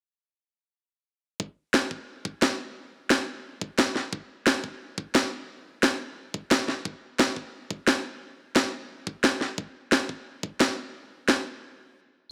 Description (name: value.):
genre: dark technical drum and bass.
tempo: 176 BPM.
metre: 4/4.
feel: straight.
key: none.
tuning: none.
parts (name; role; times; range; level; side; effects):
electronic kick drum; drums; 1.4-10.5 s; none; -35 LUFS; equal; high-pass filter on kick, high-pass filter on room.
electronic snare drum; drums; 1.7-11.4 s; none; -25 LUFS; equal; none.
room: light reverb.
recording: none.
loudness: -27 LUFS.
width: mono.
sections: 1.4-12.3 A section.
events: stop 11.6-12.3.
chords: none.